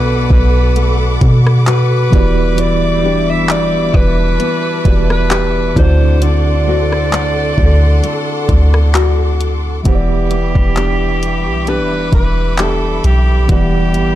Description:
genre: contemporary R&B.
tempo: 66 BPM.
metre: 4/4.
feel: swing 54% on 16ths.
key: E minor.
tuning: A4 = 439 Hz.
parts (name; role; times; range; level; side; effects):
breathy alto saxophone; melody; 0.0-14.2 s; G4 to E5; -19 LUFS; right 3 dB; none.
mellow tine electric piano; accompaniment; 0.0-14.2 s; B2 to F#5; -20 LUFS; right 2 dB; fast stereo tremolo.
clear studio string section; sustained chords; 0.0-14.2 s; G3 to D6; -23 LUFS; left 1 dB; none.
nylon-string guitar; arpeggios; 0.0-14.2 s; B2 to G4; -21 LUFS; left 7 dB; digital delay.
soft 808-style bass; bass; 0.0-14.2 s; E1 to B2; -14 LUFS; equal; none.
smooth R&B drum kit; drums; 0.3-14.2 s; handclaps, hi-hat, kick drum, rim click; -14 LUFS; equal; none.
mallet-like synth pluck; texture; 3.9-10.3 s; D5 to F#5; -32 LUFS; equal; none.
room: small room ambience.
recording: dark, warm production.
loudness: -10 LUFS.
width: side -13 dB against mid.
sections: 0.0-9.9 A section; 9.9-14.2 B section.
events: none.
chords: 0.0 Bm7; 2.1 Em7; 5.8 D7; 9.9 Em7.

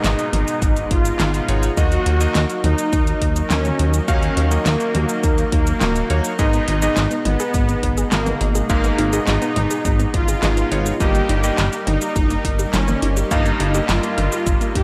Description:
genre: synthwave.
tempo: 104 BPM.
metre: 4/4.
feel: straight.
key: G# dorian.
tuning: A4 = 436 Hz.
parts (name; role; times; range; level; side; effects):
soft supersaw; melody; 0.0-14.8 s; A#3 to G4; -26 LUFS; equal; digital delay.
lush unison pad; sustained chords; 0.0-14.8 s; B2 to D#4; -29 LUFS; equal; chorus, sidechain pumping.
clear electric grand piano; stabs; 0.0-14.8 s; G2 to E#5; -27 LUFS; equal; digital delay.
chorused synth bass; bass; 0.0-14.8 s; D#1 to D#2; -23 LUFS; equal; tube saturation, sidechain pumping.
pop drum kit; drums; 0.0-14.8 s; handclaps, hi-hat, shaker, snare drum, toms; -27 LUFS; equal; studio reverb.
electronic kick drum; drums; 0.6-14.8 s; none; -22 LUFS; equal; studio reverb.
unison pluck; arpeggios; 6.4-14.8 s; G3 to G#4; -31 LUFS; equal; none.
room: light reverb, digital ambience.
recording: none.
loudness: -19 LUFS.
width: mono.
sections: 0.0-14.8 A section.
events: none.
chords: 0.0 G#m; 1.8 D#m; 6.4 G#m; 11.0 D#/G.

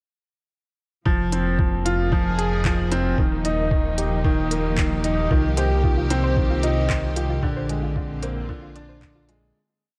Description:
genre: piano and strings electronica.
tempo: 113 BPM.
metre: 4/4.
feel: straight.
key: F dorian.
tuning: A4 = 441 Hz.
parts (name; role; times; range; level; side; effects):
rich studio string section; sustained chords; 1.1-9.6 s; D3 to Ab4; -33 LUFS; equal; sidechain pumping.
clear upright piano; riff; 1.1-9.6 s; D3 to Ab4; -27 LUFS; equal; delay.
dark detuned saw bass; bass; 1.1-9.5 s; Eb1 to C2; -27 LUFS; equal; sidechain pumping.
electronic kick drum; drums; 1.1-9.1 s; none; -25 LUFS; equal; none.
organic electronic drum kit; drums; 1.3-9.4 s; handclaps, hi-hat; -33 LUFS; equal; none.
soft round pluck; arpeggios; 5.3-9.3 s; F4 to C5; -35 LUFS; equal; chorus, sidechain pumping, delay.
room: light reverb.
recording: none.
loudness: -22 LUFS.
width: mono.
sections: 1.1-9.6 drop.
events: drop 1.1-9.6; fade-out 6.7-9.6.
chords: 1.1 Fm; 3.2 Eb; 5.3 Cm; 7.4 Bb7.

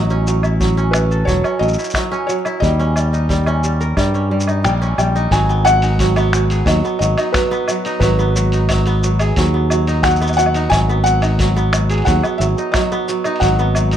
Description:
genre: folktronica.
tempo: 89 BPM.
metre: 4/4.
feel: straight.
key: G# minor from 5.3 s.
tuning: A4 = 439 Hz.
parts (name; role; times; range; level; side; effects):
kora; arpeggios; 0.0-14.0 s; F#3 to A#4; -20 LUFS; right 2 dB; ping-pong delay.
fingered electric bass; bass; 0.0-14.0 s; E1 to G2; -16 LUFS; equal; none.
lo-fi sampler-style drum kit; drums; 0.1-14.0 s; cabasa, finger snaps, hi-hat, woodblock; -24 LUFS; equal; studio ambience.
kick drum; drums; 0.6-13.5 s; none; -22 LUFS; equal; studio ambience.
felt-muted upright piano; melody; 0.9-14.0 s; B4 to G#5; -20 LUFS; left 1 dB; ping-pong delay.
room: light reverb, small room ambience.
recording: rough home demo mix.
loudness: -14 LUFS.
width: side -10 dB against mid.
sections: 0.0-5.3 A section; 5.3-14.0 B section.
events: kick drops out 4.6-5.3; band accent 4.6-5.0.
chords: 0.0 A6; 2.6 D#7; 5.3 G#m7.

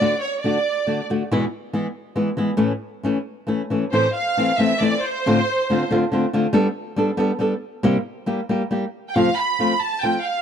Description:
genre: mexican folk, mariachi.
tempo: 138 BPM.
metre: 3/4.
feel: rubato.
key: A major, A minor from 3.9 s.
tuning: A4 = 440 Hz.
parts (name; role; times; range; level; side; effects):
clear studio violin section; melody; 0.0-1.0, 3.9-5.9, 9.1-10.4 s; C5 to B5; -21 LUFS; right 3 dB; none.
flamenco guitar; accompaniment; 0.0-10.2 s; E2 to A4; -19 LUFS; left 1 dB; none.
room: little or no reverb.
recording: dry, close 1970s-style studio recording.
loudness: -19 LUFS.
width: side -8 dB against mid.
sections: 0.0-3.9 A section; 3.9-10.4 B section.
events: none.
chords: 0.0 D; 1.3 E; 2.6 A; 3.9 Am; 5.3 Dm7/A; 6.5 Gadd9; 7.8 C7 (rootless); 9.1 F.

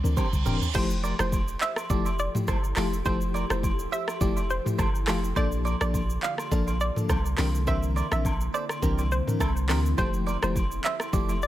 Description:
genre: afrobeats.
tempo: 104 BPM.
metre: 4/4.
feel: swing 55% on 16ths.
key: F major.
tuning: A4 = 438 Hz.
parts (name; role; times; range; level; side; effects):
FM electric piano with tremolo; accompaniment; 0.0-11.4 s; E3 to Bb4; -31 LUFS; left 4 dB; none.
punchy sub bass; bass; 0.0-11.5 s; E1 to D2; -28 LUFS; equal; none.
reverse cymbal; sound effects; 0.0-0.7 s; none; -37 LUFS; right 8 dB; none.
afro-pop drum kit; drums; 0.1-11.5 s; crash cymbal, handclaps, hi-hat, kick drum, rim click, shaker, toms; -29 LUFS; equal; none.
direct-recorded clean electric guitar; riff; 0.2-11.3 s; E4 to F5; -36 LUFS; right 8 dB; lush chorus, digital delay.
agogo bells and woodblock; percussion; 0.2-11.4 s; none; -37 LUFS; right 1 dB; none.
ethereal airy pad; sustained chords; 1.5-11.5 s; D3 to A4; -38 LUFS; left 1 dB; ensemble chorus, built-in reverb.
hollow square pluck; melody; 0.8-11.5 s; C5 to F5; -33 LUFS; right 1 dB; chorus, digital delay.
room: digital ambience.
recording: none.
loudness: -24 LUFS.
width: side -14 dB against mid.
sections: 0.7-11.5 A section.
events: reverse cymbal 0.0-0.7; drum fill 0.2-0.7.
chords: 0.0 C9; 0.7 Fmaj9; 5.4 Bbmaj7; 7.4 C9; 10.0 Fmaj9.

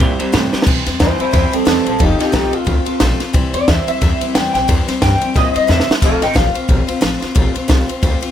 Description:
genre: rockabilly.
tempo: 179 BPM.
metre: 4/4.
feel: swing 58% on 8ths.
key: C major.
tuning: A4 = 441 Hz.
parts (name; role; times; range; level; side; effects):
electric guitar through a small old amp; melody; 0.0-7.3 s; C4 to G5; -18 LUFS; equal; analog chorus, analog delay.
picked steel-string acoustic guitar; accompaniment; 0.0-8.3 s; C3 to C5; -21 LUFS; left 3 dB; none.
electric guitar through a small old amp; riff; 0.0-0.7 s; C3 to G3; -20 LUFS; right 6 dB; none.
upright bass; bass; 0.0-8.3 s; F1 to Bb2; -19 LUFS; equal; none.
compact cocktail drum kit; drums; 0.0-8.3 s; crash cymbal, kick drum, ride cymbal, snare drum, splash cymbal; -16 LUFS; equal; none.
room: light reverb.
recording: none.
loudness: -12 LUFS.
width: side -10 dB against mid.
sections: 0.7-8.3 A section.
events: drum fill 0.5, 5.7-6.0; clean electric guitar solo 0.7-8.3.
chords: 0.0 C; 2.0 F; 3.3 C; 6.0 F.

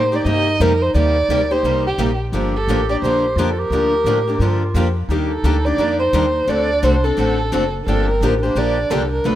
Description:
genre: acoustic string swing (jazz manouche).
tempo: 174 BPM.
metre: 4/4.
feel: swing 61% on 8ths.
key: G minor.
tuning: A4 = 440 Hz.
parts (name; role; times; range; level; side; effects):
dark violin; melody; 0.0-9.4 s; G4 to Eb5; -20 LUFS; right 1 dB; none.
growling clarinet; second line; 0.0-9.4 s; C4 to G4; -26 LUFS; right 4 dB; none.
picked steel-string acoustic guitar; accompaniment; 0.0-9.4 s; B2 to A4; -22 LUFS; left 5 dB; none.
picked steel-string acoustic guitar; accompaniment; 0.0-9.4 s; B2 to B4; -26 LUFS; right 7 dB; none.
upright bass; bass; 0.0-9.4 s; F#1 to A2; -20 LUFS; equal; none.
room: light reverb, small room ambience.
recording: rough home demo mix.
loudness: -15 LUFS.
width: side -12 dB against mid.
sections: 0.0-9.4 A section.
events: none.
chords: 0.0 Cm9; 2.3 Gm9; 5.1 Ebmaj7; 6.5 D7; 7.9 Gm9.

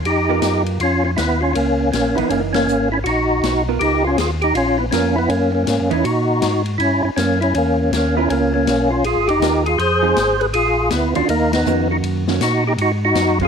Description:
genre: soul jazz organ trio.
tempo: 160 BPM.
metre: 4/4.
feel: swing 64% on 8ths.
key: Db mixolydian.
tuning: A4 = 440 Hz.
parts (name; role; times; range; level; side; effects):
mellow tonewheel organ; bass; 0.0-13.5 s; F1 to Bb2; -22 LUFS; equal; slow rotary speaker, transformer saturation.
percussive tonewheel organ; melody; 0.1-13.5 s; Bb3 to C5; -16 LUFS; equal; slow rotary speaker, overdrive, chorus vibrato.
swinging big-band drum kit; drums; 0.1-13.5 s; hi-hat, kick drum, ride cymbal, snare drum; -27 LUFS; left 8 dB; none.
hollow-body jazz guitar; accompaniment; 0.3-13.5 s; Eb3 to Bb4; -24 LUFS; right 13 dB; none.
room: light reverb, studio ambience.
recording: 1960s-style stereo with parts hard left and right.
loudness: -15 LUFS.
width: side -6 dB against mid.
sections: 0.0-13.5 A section.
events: band accent 2.5, 11.5.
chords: 0.0 Db13; 2.3 Gb13; 3.8 Db13; 5.3 Gb13; 6.8 Gdim7; 8.3 Db13; 9.8 Fm7; 10.5 Bb7b9; 11.3 Ebm7; 12.8 Ab5.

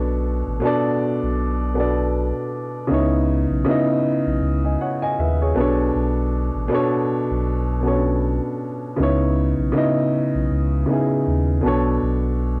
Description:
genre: lo-fi hip hop.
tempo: 79 BPM.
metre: 4/4.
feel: swing 57% on 16ths.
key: unclear.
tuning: A4 = 438 Hz.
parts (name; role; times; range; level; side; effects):
dark upright piano; accompaniment; 0.0-12.6 s; B2 to G#5; -22 LUFS; equal; low-pass filter, cassette tape.
warm sub bass; bass; 0.0-12.6 s; A1 to D#2; -24 LUFS; equal; none.
room: light reverb.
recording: home recording on cassette.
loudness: -21 LUFS.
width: mono.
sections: 0.0-12.6 A section.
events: none.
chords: 0.0 Bm9; 2.9 C#m9; 5.6 Bm9; 9.0 C#m9; 11.6 Bm9.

